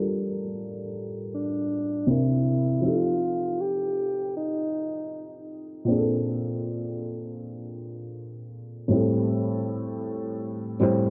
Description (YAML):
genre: lo-fi hip hop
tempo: 79 BPM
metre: 4/4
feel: swing 55% on 16ths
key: unclear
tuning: A4 = 440 Hz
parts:
  - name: felt-muted upright piano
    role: accompaniment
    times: 0.0-11.1 s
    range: A2 to C5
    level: -28 LUFS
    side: equal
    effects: cassette tape, low-pass filter
  - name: breathy tenor saxophone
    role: melody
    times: 1.3-5.5 s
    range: D4 to G4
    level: -31 LUFS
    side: equal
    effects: low-pass filter
room: moderate plate reverb, RT60 3.5 s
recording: dark, warm production, low-pass filter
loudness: -27 LUFS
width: mono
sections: 0.0-11.1 A section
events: filter sweep 0.0-11.1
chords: 0.0 Gm7; 2.1 C7; 2.8 F7; 5.9 Bbmaj7; 8.9 Am7